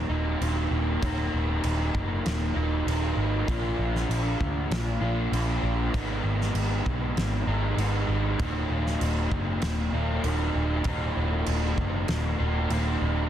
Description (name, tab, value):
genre	rock, shoegaze and dream pop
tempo	98 BPM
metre	4/4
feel	straight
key	Eb harmonic minor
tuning	A4 = 436 Hz
part	raw garage guitar	riff	0.0-13.3 s	Eb2 to F4	-28 LUFS	equal	overdrive, wide subtle chorus
part	vintage muted picked electric bass	bass	0.0-13.3 s	Eb1 to D2	-27 LUFS	equal	none
part	loose indie drum kit	drums	0.4-12.8 s	crash cymbal, kick drum, snare drum	-33 LUFS	right 1 dB	none
room	studio reverb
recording	dense, heavily limited modern master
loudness	-24 LUFS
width	side -10 dB against mid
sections	0.0-13.3 A section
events	none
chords	0.0 Ebm; 3.5 Bb; 5.9 Abm; 8.4 Ebm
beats	0.41 | 1.02 1.64 2.25 2.86 | 3.48 4.09 4.71 5.32 | 5.94 6.55 7.17 7.79 | 8.40 9.02 9.63 10.25 | 10.86 11.48 12.09 12.71